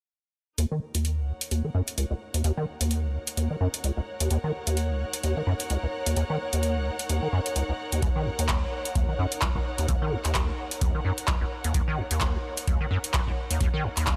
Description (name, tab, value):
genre	acid house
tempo	129 BPM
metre	4/4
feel	swing 57% on 16ths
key	Eb minor pentatonic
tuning	A4 = 440 Hz
part	liquid acid bass	riff	0.6-14.2 s	Db2 to Eb3	-30 LUFS	equal	overdrive, ensemble chorus, cassette tape
part	booming analog drum machine	drums	0.6-14.2 s	handclaps, hi-hat	-33 LUFS	equal	none
part	warm studio string section	texture	0.6-14.2 s	Eb4 to Gb5	-37 LUFS	equal	sidechain pumping
part	electronic kick drum	drums	8.0-14.2 s	none	-30 LUFS	equal	none
room	light reverb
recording	lossy compression artefacts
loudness	-28 LUFS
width	mono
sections	0.6-14.2 A section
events	fade-in on string section 0.6-14.2; filter sweep on acid bass 0.6-14.2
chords	0.6 Ebm7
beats	| 0.58 1.05 1.51 1.98 | 2.44 2.91 3.37 3.84 | 4.30 4.77 5.23 5.70 | 6.17 6.63 7.09 7.56 | 8.03 8.49 8.96 9.42 | 9.89 10.35 10.82 11.28 | 11.75 12.21 12.68 13.14 | 13.61 14.07